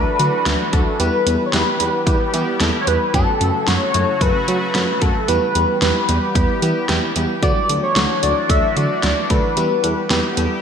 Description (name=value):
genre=synth-pop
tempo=112 BPM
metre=4/4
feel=straight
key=E dorian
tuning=A4 = 435 Hz
part: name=octave-doubled lead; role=melody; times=0.0-10.6 s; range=A4 to E5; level=-20 LUFS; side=left 1 dB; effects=chorus, phaser, shimmer reverb, ping-pong delay
part: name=FM electric piano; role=accompaniment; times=0.0-10.5 s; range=F#3 to A4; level=-24 LUFS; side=right 2 dB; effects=chorus, shimmer reverb
part: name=sweeping resonant pad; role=sustained chords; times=0.0-10.6 s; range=C#3 to G4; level=-25 LUFS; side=left 1 dB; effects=chorus, shimmer reverb
part: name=smooth synth bass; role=bass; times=0.0-10.5 s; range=D2 to F#3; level=-22 LUFS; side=equal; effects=none
part: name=pop drum kit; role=drums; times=0.2-10.5 s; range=hi-hat, kick drum, snare drum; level=-20 LUFS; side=equal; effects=gated reverb
room=moderate plate reverb, RT60 2.8 s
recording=bright 1980s-style digital production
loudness=-15 LUFS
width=side -7 dB against mid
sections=0.0-10.6 A section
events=none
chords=0.0 Dadd9; 1.0 Em; 3.1 F#m; 5.3 Em; 7.4 Dadd9; 9.6 Em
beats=0.46 | 1.00 1.53 2.07 2.60 | 3.14 3.68 4.21 4.75 | 5.28 5.82 6.36 6.89 | 7.43 7.96 8.50 9.03 | 9.57 10.11